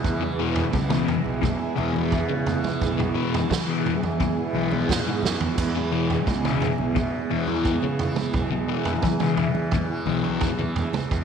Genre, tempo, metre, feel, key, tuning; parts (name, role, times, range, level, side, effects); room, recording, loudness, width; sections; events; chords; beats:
psychedelic rock; 87 BPM; 4/4; straight; E major; A4 = 440 Hz
string machine, cellos; sustained chords; 0.0-11.2 s; B3 to G#4; -28 LUFS; right 6 dB; ensemble chorus
fuzz fingered electric bass; bass; 0.0-11.2 s; B1 to E3; -29 LUFS; equal; overdrive
tanpura; drone; 0.0-11.2 s; E2 to E3; -32 LUFS; equal
vintage drum kit; drums; 0.0-11.2 s; crash cymbal, kick drum, snare drum, toms; -27 LUFS; right 3 dB
thick fuzz guitar; riff; 0.2-10.6 s; E2 to E3; -26 LUFS; left 10 dB; distortion, phaser
congas; percussion; 1.1-11.1 s; -36 LUFS; right 9 dB
moderate echo chamber reverb, RT60 1.6 s, small room reverb; 1960s-style stereo with parts hard left and right; -21 LUFS; side -7 dB against mid
0.0-11.2 A section
drum fill 5.2-5.6
0.0 E
| 0.04 0.74 1.43 2.12 | 2.81 3.51 4.20 4.89 | 5.58 6.28 6.97 7.66 | 8.35 9.04 9.73 10.42 | 11.11